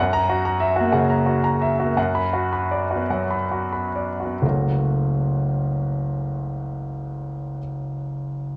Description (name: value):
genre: classical, virtuoso piano study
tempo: 84-129 BPM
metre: 4/4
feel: rubato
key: F# minor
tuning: A4 = 440 Hz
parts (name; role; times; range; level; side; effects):
- clear grand piano; solo; 0.0-8.6 s; F#1 to B5; -23 LUFS; equal; none
room: moderate recital hall reverb, RT60 1.3 s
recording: worn, warbling old tape, cassette tape, warbly pitch drift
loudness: -23 LUFS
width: mono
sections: 0.0-4.4 A section; 4.4-8.6 B section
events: slowing down 0.0-4.4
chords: 0.0 F#7; 2.0 Bm/F#; 4.4 F#m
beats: 0.44 0.93 1.44 | 1.97 2.52 3.10 3.73 | 4.42 5.10 5.76 6.42 | 7.09 7.76 8.43